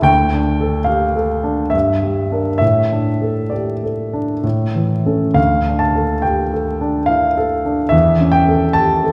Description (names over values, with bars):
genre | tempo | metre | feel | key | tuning
classical, romantic nocturne for solo piano | 63-74 BPM | 3/4 | rubato | D minor | A4 = 440 Hz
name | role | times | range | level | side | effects
warm grand piano | solo | 0.0-9.1 s | D2 to A5 | -16 LUFS | equal | none
room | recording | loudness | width
wet recital hall reverb, RT60 1.6 s | heard from further back in the room, vinyl crackle | -16 LUFS | mono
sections
0.0-9.1 A section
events
none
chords
0.1 Dm; 1.7 Gm; 2.6 Asus4; 4.4 A; 5.4 Dm; 7.9 A7/E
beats
| 0.07 0.89 1.74 | 2.62 3.52 4.44 | 5.37 6.25 7.09 | 7.93 8.76